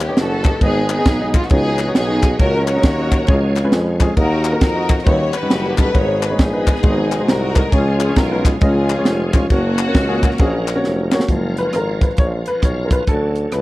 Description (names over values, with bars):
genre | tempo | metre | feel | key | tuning
uptempo gospel | 135 BPM | 4/4 | swing 63% on 8ths | F# major | A4 = 440 Hz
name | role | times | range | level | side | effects
warm studio string section | melody | 0.0-10.8 s | A#3 to C#5 | -21 LUFS | left 1 dB | none
warm upright piano | accompaniment | 0.0-13.6 s | G#2 to G#5 | -22 LUFS | left 1 dB | none
bright tonewheel organ | sustained chords | 0.0-13.6 s | B#2 to E#5 | -29 LUFS | right 2 dB | chorus vibrato, slow rotary speaker
warm tuba | bass | 0.0-13.6 s | E#1 to E#2 | -20 LUFS | equal | none
crisp fusion drum kit | drums | 0.0-13.6 s | hi-hat, kick drum, ride cymbal, rim click, snare drum | -15 LUFS | equal | none
group handclap | percussion | 0.0-11.2 s | none | -27 LUFS | left 8 dB | none
room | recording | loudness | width
studio ambience | dry, close 1970s-style studio recording | -14 LUFS | side -18 dB against mid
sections
0.0-11.3 A section; 11.3-13.6 B section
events
upright piano fill 3.3-4.2; tonewheel organ fill 3.5-4.2; drum fill 10.8-11.3; upright piano solo 11.3-13.6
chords
0.0 D#7alt; 0.6 G#m; 1.5 C#9sus4; 2.4 F#/C#; 3.3 C#; 4.2 D#m; 5.1 D#7alt; 5.9 G#m; 6.8 G#7; 7.7 C#; 9.5 F#; 11.3 F#maj7; 13.1 Dmaj7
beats
0.17 | 0.62 1.06 1.51 1.95 | 2.39 2.84 3.28 3.73 | 4.17 4.61 5.06 5.50 | 5.95 6.39 6.83 7.28 | 7.72 8.17 8.61 9.06 | 9.50 9.95 10.40 10.84 | 11.29 11.74 12.18 12.63 | 13.08 13.53